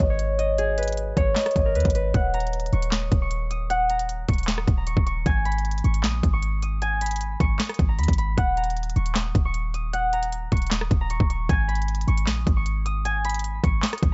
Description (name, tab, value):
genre	hip hop, trap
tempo	154 BPM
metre	4/4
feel	half-time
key	Eb minor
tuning	A4 = 440 Hz
part	Celtic harp	melody	0.0-14.1 s	Ab4 to Eb6	-29 LUFS	equal	low-pass filter
part	clean 808-style bass	bass	0.0-14.1 s	Eb1 to Eb2	-27 LUFS	equal	none
part	trap drum kit	drums	0.0-14.1 s	handclaps, hi-hat, kick drum, rim click, snare drum	-27 LUFS	equal	none
room	little or no reverb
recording	nothing above 7.8 kHz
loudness	-24 LUFS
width	mono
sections	0.0-2.1 A section; 2.1-14.1 B section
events	none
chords	0.0 Abm; 2.1 Eb5; 5.3 Abm; 8.4 Eb5; 11.5 Abm